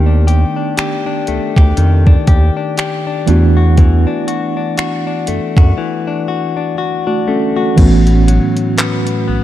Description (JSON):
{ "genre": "contemporary R&B", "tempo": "60 BPM", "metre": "4/4", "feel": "swing 58% on 16ths", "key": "A major", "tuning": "A4 = 438 Hz", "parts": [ { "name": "mellow tine electric piano", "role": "accompaniment", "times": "0.0-9.4 s", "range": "D#3 to A4", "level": "-18 LUFS", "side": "right 3 dB", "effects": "medium stereo tremolo" }, { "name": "direct-recorded clean electric guitar", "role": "arpeggios", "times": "0.0-9.4 s", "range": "A2 to G4", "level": "-18 LUFS", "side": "left 6 dB", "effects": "ping-pong delay" }, { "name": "round analog bass", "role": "bass", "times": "0.0-9.4 s", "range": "A1 to F#2", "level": "-11 LUFS", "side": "equal", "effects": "none" }, { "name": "crisp 8-bit digital drum machine", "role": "drums", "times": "0.3-9.3 s", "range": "crash cymbal, finger snaps, handclaps, hi-hat, kick drum", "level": "-13 LUFS", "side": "equal", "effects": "none" } ], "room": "little or no reverb", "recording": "dark, warm production", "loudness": "-11 LUFS", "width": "side -13 dB against mid", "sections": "0.0-7.8 A section; 7.8-9.4 B section", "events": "break 5.8-7.8", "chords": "0.0 B7alt/D#; 3.3 E9sus4; 7.8 A69" }